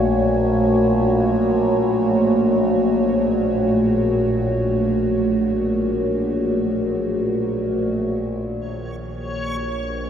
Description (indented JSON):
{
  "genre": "ambient",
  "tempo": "free time",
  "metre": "none",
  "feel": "none",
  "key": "unclear",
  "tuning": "A4 = 441 Hz",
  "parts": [
    { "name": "dark analog pad", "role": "sustained chords", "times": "0.0-10.1 s", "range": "A3 to Db5", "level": "-19 LUFS", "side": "equal", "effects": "chorus" },
    { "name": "overtone-sweeping drone", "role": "drone", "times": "0.0-10.1 s", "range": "Bb1 to Bb2", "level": "-22 LUFS", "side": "left 1 dB", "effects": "chorus, built-in reverb, phaser" },
    { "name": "backwards swelling texture", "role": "texture", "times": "8.7-10.1 s", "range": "Db5", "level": "-29 LUFS", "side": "left 1 dB", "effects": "built-in reverb" },
    { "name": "mellow bass clarinet", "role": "melody", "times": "8.5-10.1 s", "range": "Eb3 to E3", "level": "-41 LUFS", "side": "equal", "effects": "none" }
  ],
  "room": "wet huge ambient reverb, RT60 8.0 s",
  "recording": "none",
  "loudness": "-17 LUFS",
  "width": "side -8 dB against mid",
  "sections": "0.0-8.5 A section; 8.5-10.1 B section",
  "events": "none",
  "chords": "0.0 Gbm; 8.5 Eb",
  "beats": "free time"
}